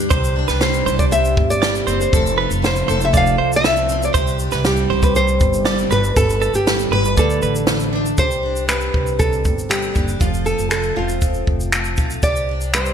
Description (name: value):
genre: acoustic pop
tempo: 119 BPM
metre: 4/4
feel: straight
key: unclear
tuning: A4 = 440 Hz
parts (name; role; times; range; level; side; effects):
- picked plugged-in steel-string acoustic guitar; accompaniment; 0.0-12.9 s; G2 to B4; -22 LUFS; equal; double-tracked left and right
- upright bass; bass; 0.0-12.9 s; E1 to D2; -22 LUFS; equal; none
- direct-recorded clean electric guitar; arpeggios; 0.1-7.5 s; A4 to D5; -24 LUFS; right 6 dB; none
- compact cocktail drum kit; drums; 0.1-12.9 s; finger snaps, kick drum, shaker, snare drum; -20 LUFS; equal; gated reverb
- nylon-string guitar; melody; 0.6-12.9 s; F4 to F5; -20 LUFS; equal; none
room: moderate plate reverb, RT60 2.1 s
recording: bright 1980s-style digital production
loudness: -15 LUFS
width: side -8 dB against mid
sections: 0.0-8.2 A section; 8.2-12.9 B section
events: none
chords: 0.1 Csus2; 2.1 F; 4.1 Csus2; 5.9 G; 7.2 D5; 8.2 Csus2; 10.2 F; 12.2 Csus2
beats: | 0.11 0.62 1.12 1.63 | 2.13 2.63 3.14 3.64 | 4.15 4.65 5.16 5.66 | 6.17 6.67 7.17 7.68 | 8.19 8.69 9.20 9.70 | 10.21 10.71 11.22 11.73 | 12.23 12.74